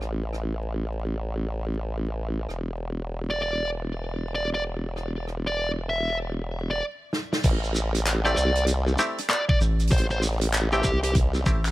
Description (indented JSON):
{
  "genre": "glitch hop",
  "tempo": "97 BPM",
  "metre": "4/4",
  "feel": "swing 62% on 16ths",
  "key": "A minor",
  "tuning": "A4 = 440 Hz",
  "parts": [
    { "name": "formant-sweep wobble bass", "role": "bass", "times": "0.0-11.4 s", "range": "E1 to C2", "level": "-27 LUFS", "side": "equal", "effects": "chorus" },
    { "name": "natural country drum kit", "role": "drums", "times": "0.0-11.7 s", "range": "crash cymbal, handclaps, hi-hat, rim click, snare drum", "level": "-29 LUFS", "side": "equal", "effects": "none" },
    { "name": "fuzz lead guitar", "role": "melody", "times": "3.3-11.1 s", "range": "G4 to E5", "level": "-28 LUFS", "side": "equal", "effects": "distortion, digital delay" },
    { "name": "electronic kick drum", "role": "drums", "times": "7.4-11.6 s", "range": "none", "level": "-22 LUFS", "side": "equal", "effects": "none" },
    { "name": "shekere", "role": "percussion", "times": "7.4-11.7 s", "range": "none", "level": "-35 LUFS", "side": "right 2 dB", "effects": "none" },
    { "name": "muted clav", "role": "stabs", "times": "8.3-11.7 s", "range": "A3 to G4", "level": "-28 LUFS", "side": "equal", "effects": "vintage 12-bit sampler grit, sidechain pumping, digital delay" },
    { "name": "rubbery square bass", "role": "bass", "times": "9.6-11.7 s", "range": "A1", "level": "-23 LUFS", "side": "equal", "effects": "none" }
  ],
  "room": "studio reverb",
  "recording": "vinyl crackle",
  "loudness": "-23 LUFS",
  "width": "side -17 dB against mid",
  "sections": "0.0-7.4 A section; 7.4-11.7 B section",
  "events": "drum fill 7.1-7.4; drop 7.4-11.7",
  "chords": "0.0 N.C.; 7.4 Am7"
}